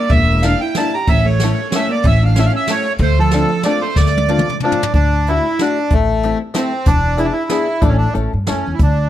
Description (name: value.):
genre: musette waltz.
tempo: 186 BPM.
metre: 3/4.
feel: rubato.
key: D minor, D major from 5.0 s.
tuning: A4 = 439 Hz.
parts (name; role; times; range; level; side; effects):
bandoneon; melody; 0.0-9.1 s; A3 to Bb5; -18 LUFS; right 1 dB; none.
hollow-body jazz guitar; second line; 0.0-4.6 s; F3 to G4; -22 LUFS; right 3 dB; none.
upright bass; bass; 0.1-9.1 s; E1 to G2; -16 LUFS; equal; none.
jazz brush drum kit; drums; 0.1-8.9 s; hi-hat, kick drum, ride cymbal, snare drum, toms; -18 LUFS; equal; none.
open-back banjo; accompaniment; 0.4-8.7 s; A3 to A4; -22 LUFS; left 5 dB; none.
room: little or no reverb.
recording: close, detailed microphones.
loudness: -13 LUFS.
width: side -12 dB against mid.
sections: 0.0-5.0 A section; 5.0-9.1 B section.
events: drum fill 4.0-5.0.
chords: 0.0 Em7b5; 1.1 A7; 3.0 Dm7; 5.0 Dadd9; 5.9 Am7; 6.9 E7; 7.8 Asus4; 8.1 A.